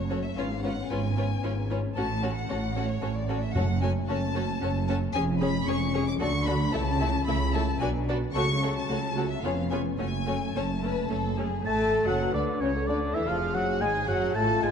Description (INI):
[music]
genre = quick classical-period movement for symphony orchestra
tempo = 112 BPM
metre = 3/4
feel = straight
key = F# minor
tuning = A4 = 437 Hz
[part]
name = rich chamber violin section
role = melody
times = 0.0-14.7 s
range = C#4 to D6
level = -35 LUFS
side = left 4 dB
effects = none
[part]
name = mellow French horn section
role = sustained chords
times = 0.0-14.7 s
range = E3 to B4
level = -34 LUFS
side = left 5 dB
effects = none
[part]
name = warm chamber cello section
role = bass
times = 0.0-14.7 s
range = C#2 to D3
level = -32 LUFS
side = right 1 dB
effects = none
[part]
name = warm chamber double bass section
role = bass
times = 0.0-14.7 s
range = E#1 to D2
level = -32 LUFS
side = right 4 dB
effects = none
[part]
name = warm chamber violin section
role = second line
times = 0.1-14.7 s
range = F#4 to A5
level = -35 LUFS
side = left 5 dB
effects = none
[part]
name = rich chamber viola section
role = accompaniment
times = 0.1-14.7 s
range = C#3 to G#4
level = -34 LUFS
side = right 2 dB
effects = none
[part]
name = timpani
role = percussion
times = 3.6-4.3 s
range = F#2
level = -30 LUFS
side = equal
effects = none
[part]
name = dark clarinet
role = second line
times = 11.7-14.7 s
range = C#4 to A4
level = -33 LUFS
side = left 2 dB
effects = none
[part]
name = large flute ensemble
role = second line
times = 11.7-14.7 s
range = C#5 to A5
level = -36 LUFS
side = left 3 dB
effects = none
[part]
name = warm oboe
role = second line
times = 11.7-14.7 s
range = C#5 to A5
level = -31 LUFS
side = equal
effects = none
[part]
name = mellow bassoon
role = accompaniment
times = 11.7-14.7 s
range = C#3 to A3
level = -35 LUFS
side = right 2 dB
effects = none
[sound]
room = moderate concert hall reverb, RT60 1.9 s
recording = dark, warm production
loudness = -25 LUFS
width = side -7 dB against mid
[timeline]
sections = 0.0-11.7 A section; 11.7-14.7 A section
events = none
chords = 0.4 C#7/G#; 2.0 F#m/A; 3.6 F#m; 5.1 C#/E#; 6.2 D; 6.7 A/C#; 7.8 G#m7b5/B (rootless); 8.4 F#m/C#; 9.4 C#7/E#; 10.0 F#m; 13.3 F#madd9